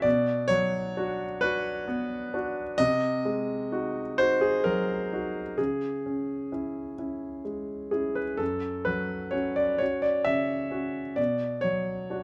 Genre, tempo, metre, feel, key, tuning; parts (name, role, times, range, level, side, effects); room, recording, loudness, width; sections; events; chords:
neoclassical minimalist piano; 43 BPM (dotted quarters); 6/8; rubato; A4 = 440 Hz
warm concert grand piano; solo; 0.0-12.2 s; F#2 to E5; -28 LUFS; equal
moderate stone room reverb, RT60 1.3 s; -29 LUFS; mono
0.0-12.2 A section
0.0 Bm; 2.8 G#7/B#; 5.6 C#m; 8.4 F#5; 11.2 Bm